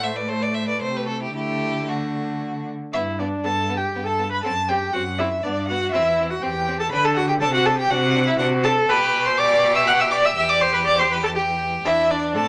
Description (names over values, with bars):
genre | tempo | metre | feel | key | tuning
quick classical-period movement for string quartet | 121 BPM | 3/4 | rubato | G major | A4 = 441 Hz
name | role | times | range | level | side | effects
warm violin | melody | 0.0-12.5 s | D4 to F#6 | -26 LUFS | equal | none
clear violin | second line | 0.0-12.5 s | B3 to E5 | -29 LUFS | equal | none
rich viola | accompaniment | 0.0-12.5 s | A3 to F#5 | -25 LUFS | equal | none
warm cello | bass | 0.0-12.5 s | E2 to D3 | -29 LUFS | equal | none
room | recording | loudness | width
moderate studio reverb, RT60 0.8 s | none | -21 LUFS | mono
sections
0.0-2.9 A section; 2.9-12.5 B section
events
none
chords
0.0 Amadd11; 0.8 Am/C; 1.3 D; 2.9 G; 4.4 F#m7b5; 5.4 G; 5.9 C/E; 6.9 D; 7.4 D7/C; 8.9 G/B; 10.4 Em; 11.8 Dsus2/E